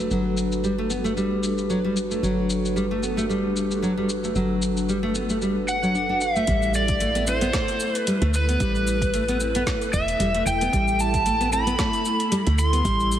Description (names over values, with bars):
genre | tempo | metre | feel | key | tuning
organic downtempo | 113 BPM | 4/4 | swing 55% on 16ths | A dorian | A4 = 442 Hz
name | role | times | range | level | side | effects
airy breathy pad | sustained chords | 0.0-13.2 s | D4 to B4 | -30 LUFS | right 3 dB | chorus, sidechain pumping
nylon-string guitar | arpeggios | 0.0-13.2 s | F#3 to D4 | -25 LUFS | left 1 dB | ping-pong delay
woody FM bass | bass | 0.0-13.2 s | E1 to D2 | -27 LUFS | equal | none
afro-pop drum kit | drums | 0.1-13.2 s | cabasa, hi-hat, snare drum | -32 LUFS | left 1 dB | low-pass filter on perc, studio reverb, low-pass filter on hats, low-pass filter on snare
overdriven slide guitar | melody | 5.7-13.2 s | B4 to C6 | -24 LUFS | equal | digital delay
electronic kick drum | drums | 6.5-13.0 s | none | -28 LUFS | equal | studio reverb
room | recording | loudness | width
moderate concert hall reverb, RT60 2.4 s | heavily compressed radio sound, multiband compression | -20 LUFS | side -10 dB against mid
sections
0.0-6.5 A section; 6.5-13.2 B section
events
none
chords
0.0 Gmaj9; 6.5 Am9